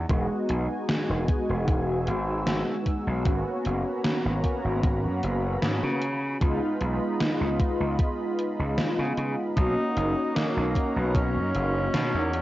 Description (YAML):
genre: vaporwave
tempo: 76 BPM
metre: 4/4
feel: straight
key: unclear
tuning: A4 = 440 Hz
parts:
  - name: lush unison pad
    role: sustained chords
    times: 0.1-12.4 s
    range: D#4 to E6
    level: -37 LUFS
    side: equal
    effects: chorus
  - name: gritty slap bass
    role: bass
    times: 0.0-12.4 s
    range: E1 to C#3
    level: -28 LUFS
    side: equal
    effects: overdrive, tube saturation
  - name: mellow synth brass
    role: accompaniment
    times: 0.1-12.4 s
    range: G#3 to F#4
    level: -28 LUFS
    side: equal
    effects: analog chorus, analog delay
  - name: electronic kick drum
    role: drums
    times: 0.1-11.3 s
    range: none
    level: -25 LUFS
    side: equal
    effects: overdrive
  - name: gated 80s digital drum machine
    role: drums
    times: 0.1-12.4 s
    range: hi-hat, snare drum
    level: -30 LUFS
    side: equal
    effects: gated reverb, gated reverb snare, overdrive
  - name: breathy tenor saxophone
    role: melody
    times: 9.6-12.4 s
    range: A#3 to D#4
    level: -30 LUFS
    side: equal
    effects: tape echo
room: moderate concert hall reverb, RT60 2.1 s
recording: worn, warbling old tape, cassette tape, warbly pitch drift, nothing above 7.7 kHz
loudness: -24 LUFS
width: side -16 dB against mid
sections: 0.0-12.4 A section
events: none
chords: 0.0 Emaj9; 3.3 G#m11; 6.0 C#9; 9.6 Bmaj9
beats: | 0.10 0.89 1.68 2.47 | 3.26 4.05 4.84 5.62 | 6.42 7.20 7.99 8.78 | 9.57 10.36 11.15 11.94